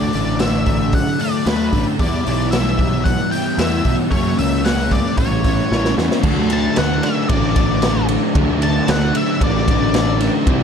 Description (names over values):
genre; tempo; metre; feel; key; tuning
rock, shoegaze and dream pop; 113 BPM; 4/4; straight; D major, D mixolydian from 6.2 s; A4 = 440 Hz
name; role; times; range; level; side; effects
octave-fuzz lead guitar; melody; 0.0-10.2 s; B4 to A5; -24 LUFS; left 3 dB; distortion, analog delay
crunchy overdriven guitar; riff; 0.0-10.6 s; F#2 to E4; -19 LUFS; left 1 dB; ensemble chorus
fuzz picked electric bass; bass; 0.0-10.6 s; A1 to F#2; -20 LUFS; equal; overdrive
raw garage drum kit; drums; 0.1-10.6 s; crash cymbal, hi-hat, kick drum, ride cymbal, snare drum; -20 LUFS; equal; none
room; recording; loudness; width
small room ambience; dark, warm production; -15 LUFS; side -7 dB against mid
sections
0.0-6.2 A section; 6.2-10.6 B section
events
drum fill 5.7-6.2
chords
0.0 D; 2.0 Em7; 4.1 F#; 5.2 A7; 6.2 D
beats
0.41 0.94 1.47 | 2.00 2.53 3.06 3.59 | 4.12 4.65 5.18 5.71 | 6.24 6.77 7.30 7.83 | 8.36 8.89 9.42 9.95 | 10.48